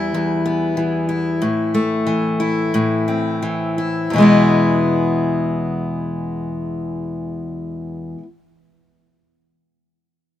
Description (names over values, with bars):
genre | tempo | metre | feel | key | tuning
pop | 83-96 BPM | 4/4 | swing 55% on 16ths | unclear | A4 = 440 Hz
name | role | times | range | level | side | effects
picked steel-string acoustic guitar | accompaniment | 0.0-8.3 s | E2 to E4 | -17 LUFS | left 1 dB | none
room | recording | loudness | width
little or no reverb | minimal, uncompressed stereo recording | -16 LUFS | side -12 dB against mid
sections
0.0-4.1 A section; 4.1-7.0 B section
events
slowing down 0.0-4.1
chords
0.0 Em; 1.4 Am; 4.1 E